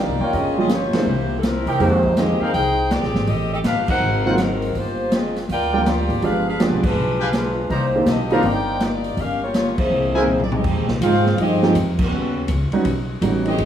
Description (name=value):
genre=jazz, big band swing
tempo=163 BPM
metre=4/4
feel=swing 65% on 8ths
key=C minor, F minor from 10.6 s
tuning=A4 = 441 Hz
part: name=clear saxophone section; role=melody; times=0.0-13.7 s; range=Gb3 to G5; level=-22 LUFS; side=left 1 dB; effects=none
part: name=upright bass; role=bass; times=0.0-13.7 s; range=G1 to C3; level=-24 LUFS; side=equal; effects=none
part: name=warm trumpet section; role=stabs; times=0.2-10.2 s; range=Eb4 to Bb5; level=-26 LUFS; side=right 1 dB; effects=none
part: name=swinging big-band drum kit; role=drums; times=0.3-13.7 s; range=crash cymbal, hi-hat, kick drum, ride cymbal, snare drum, toms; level=-24 LUFS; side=equal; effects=none
part: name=clear baby grand piano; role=accompaniment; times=0.6-13.6 s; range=Eb3 to G#4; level=-22 LUFS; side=right 2 dB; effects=none
part: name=clear trombone section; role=second line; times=9.8-13.7 s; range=Db3 to F4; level=-22 LUFS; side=right 2 dB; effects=none
room=moderate large studio reverb, RT60 1.4 s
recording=small room reverb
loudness=-17 LUFS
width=side -10 dB against mid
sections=0.0-10.6 A section; 10.6-13.7 B section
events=band accent 0.9, 3.8, 6.8, 9.7, 11.9; drum fill 10.3-10.6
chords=0.3 Gm7b5; 1.1 C7; 1.8 Fm11; 3.3 Am7b5; 4.0 Ab13; 4.8 Gm7; 6.2 G7b9; 7.7 Cm9; 9.2 Gm7b5; 9.9 C7alt; 10.6 Fm9; 12.1 Eb7alt